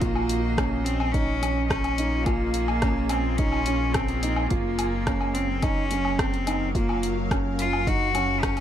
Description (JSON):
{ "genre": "piano and strings electronica", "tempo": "107 BPM", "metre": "4/4", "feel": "straight", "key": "Bb minor", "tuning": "A4 = 440 Hz", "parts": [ { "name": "bright cello", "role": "melody", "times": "0.0-8.6 s", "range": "Bb3 to Gb4", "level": "-28 LUFS", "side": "left 2 dB", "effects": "none" }, { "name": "granular cloud pad", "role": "sustained chords", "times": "0.0-8.6 s", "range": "Gb3 to F5", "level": "-34 LUFS", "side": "equal", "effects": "built-in reverb, sidechain pumping" }, { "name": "felt-muted upright piano", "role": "riff", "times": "0.0-8.5 s", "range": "Db4 to F4", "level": "-30 LUFS", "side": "right 2 dB", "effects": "none" }, { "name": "round analog bass", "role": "bass", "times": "0.0-8.6 s", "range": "Gb1 to Bb1", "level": "-29 LUFS", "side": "equal", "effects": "sidechain pumping" }, { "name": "deep house drum kit", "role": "drums", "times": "0.0-8.6 s", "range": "hi-hat, rim click, woodblock", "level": "-31 LUFS", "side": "left 1 dB", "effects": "none" }, { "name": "electronic kick drum", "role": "drums", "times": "0.0-8.5 s", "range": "none", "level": "-27 LUFS", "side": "equal", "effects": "none" } ], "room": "light reverb", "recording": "dark, warm production", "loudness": "-22 LUFS", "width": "side -10 dB against mid", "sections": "0.0-8.6 A section", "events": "none", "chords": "0.0 Bbm7; 4.5 Gbmaj7" }